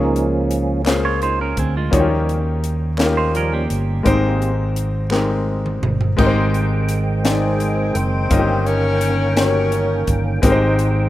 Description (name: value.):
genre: slow gospel.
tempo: 56 BPM (dotted quarters).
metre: 6/8.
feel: straight.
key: Ab major.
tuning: A4 = 441 Hz.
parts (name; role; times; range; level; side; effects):
warm baby grand piano; accompaniment; 0.0-11.1 s; G2 to G5; -21 LUFS; left 3 dB; none.
percussive tonewheel organ; sustained chords; 0.0-11.1 s; Eb3 to G5; -24 LUFS; right 3 dB; slow rotary speaker, chorus vibrato.
fingered electric bass; bass; 0.0-11.1 s; Gb1 to Eb2; -20 LUFS; equal; none.
crisp fusion drum kit; drums; 0.2-10.9 s; crash cymbal, hi-hat, kick drum, snare drum, toms; -22 LUFS; equal; none.
group handclap; percussion; 0.9-5.4 s; none; -31 LUFS; right 1 dB; none.
clean electric guitar; second line; 1.1-4.0 s; Ab3 to Db5; -24 LUFS; right 5 dB; none.
mellow horn section; melody; 7.3-10.4 s; Ab3 to Db5; -22 LUFS; left 2 dB; none.
room: light reverb, studio ambience.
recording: rough home demo mix.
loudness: -16 LUFS.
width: side -14 dB against mid.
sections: 0.0-6.2 A section; 6.2-11.1 B section.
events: drum fill 5.1-6.2.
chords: 0.0 Db6; 1.9 Eb7; 4.1 Abmaj7; 8.3 Eb7/G; 10.4 Abmaj7.